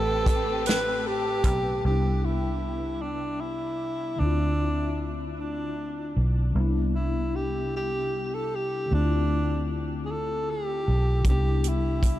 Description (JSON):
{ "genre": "slow six-eight R&B", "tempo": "51 BPM (dotted quarters)", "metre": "6/8", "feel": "straight", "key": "unclear", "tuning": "A4 = 440 Hz", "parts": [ { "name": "breathy tenor saxophone", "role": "melody", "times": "0.0-12.2 s", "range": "D4 to B4", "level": "-29 LUFS", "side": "right 1 dB", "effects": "diffuse ambient delay" }, { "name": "mellow tine electric piano", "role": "accompaniment", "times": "0.0-12.2 s", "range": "A2 to A5", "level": "-32 LUFS", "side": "left 5 dB", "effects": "phaser" }, { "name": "warm studio string section", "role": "sustained chords", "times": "0.0-1.8 s", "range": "A3 to B4", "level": "-36 LUFS", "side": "equal", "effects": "none" }, { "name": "vintage muted fingered electric bass", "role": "bass", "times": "0.0-12.2 s", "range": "A1 to D2", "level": "-26 LUFS", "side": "equal", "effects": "none" }, { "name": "warm soul drum kit", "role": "drums", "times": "0.3-1.6, 11.2-12.2 s", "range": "hi-hat, kick drum, snare drum", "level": "-25 LUFS", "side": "equal", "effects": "none" } ], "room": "light reverb, small room ambience", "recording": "none", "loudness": "-24 LUFS", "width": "side -14 dB against mid", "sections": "0.0-1.8 A section; 1.8-12.2 B section", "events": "tine electric piano fill 0.7-1.8", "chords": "0.0 Am9; 1.8 Cmaj9; 4.2 Dm9; 6.5 Cmaj9; 8.9 Dm9; 11.2 Cmaj9", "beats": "0.66 | 1.84 3.01 | 4.19 5.37 | 6.54 7.72 | 8.90 10.07 | 11.25" }